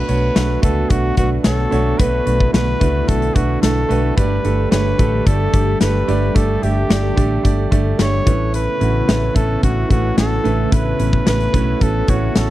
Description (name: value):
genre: 1980s-style pop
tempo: 110 BPM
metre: 4/4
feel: straight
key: B minor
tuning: A4 = 440 Hz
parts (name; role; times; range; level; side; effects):
- clear flugelhorn; melody; 0.0-12.5 s; F#4 to C#5; -22 LUFS; left 1 dB; none
- warm grand piano; accompaniment; 0.0-12.5 s; G2 to E5; -21 LUFS; right 5 dB; none
- soft string machine; sustained chords; 0.3-12.5 s; C#3 to A4; -26 LUFS; left 1 dB; ensemble chorus
- vintage muted fingered electric bass; bass; 0.1-12.5 s; G1 to C#2; -19 LUFS; equal; none
- big rock drum kit; drums; 0.1-12.5 s; hi-hat, kick drum, snare drum; -18 LUFS; left 1 dB; none
room: studio reverb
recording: dry, close 1970s-style studio recording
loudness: -14 LUFS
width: side -15 dB against mid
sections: 0.0-12.5 A section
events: none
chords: 0.0 Bm7; 4.2 Gsus2; 8.3 Aadd9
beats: 0.36 0.91 1.45 | 2.00 2.54 3.09 3.63 | 4.18 4.72 5.27 5.82 | 6.36 6.91 7.45 8.00 | 8.54 9.09 9.63 10.18 | 10.72 11.27 11.81 12.36